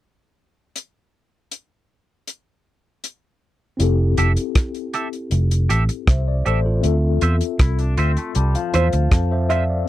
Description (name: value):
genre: lovers rock reggae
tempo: 79 BPM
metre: 4/4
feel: straight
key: F major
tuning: A4 = 440 Hz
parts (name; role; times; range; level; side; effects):
- damped 70s drum kit; drums; 0.8-9.7 s; hi-hat, kick drum, rim click; -20 LUFS; equal; none
- mellow tine electric piano; accompaniment; 3.8-9.9 s; C4 to C6; -25 LUFS; left 6 dB; medium stereo tremolo
- vintage muted fingered electric bass; bass; 3.8-9.8 s; F1 to F2; -18 LUFS; equal; none
- twangy electric guitar; stabs; 4.2-9.6 s; F4 to E5; -23 LUFS; right 6 dB; wide subtle chorus
- twangy electric guitar; arpeggios; 7.6-9.7 s; F3 to E4; -30 LUFS; left 6 dB; none
- felt-muted upright piano; melody; 8.7-9.9 s; C5 to E5; -24 LUFS; right 2 dB; tape echo
room: little or no reverb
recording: dry, close 1970s-style studio recording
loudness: -17 LUFS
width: side -14 dB against mid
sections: 0.8-3.8 A section; 3.8-9.9 B section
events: tine electric piano fill 7.6-9.9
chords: 0.8 N.C.; 3.8 Fmaj9; 6.8 Dm9